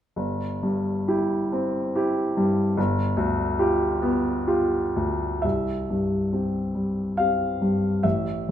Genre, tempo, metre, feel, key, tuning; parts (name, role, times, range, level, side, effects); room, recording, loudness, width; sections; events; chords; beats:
classical, romantic nocturne for solo piano; 69 BPM; 3/4; uneven beats, rubato; C major; A4 = 439 Hz
clear baby grand piano; solo; 0.2-8.5 s; G1 to F5; -22 LUFS; equal
wet large studio reverb, RT60 1.2 s; minimal, uncompressed stereo recording; -22 LUFS; side -10 dB against mid
0.2-5.4 A section; 5.4-8.5 B section
0.2 C/G; 2.8 G7; 5.4 C
| 0.17 1.07 1.95 | 2.78 3.58 4.46 | 5.44 6.33 7.18 | 8.04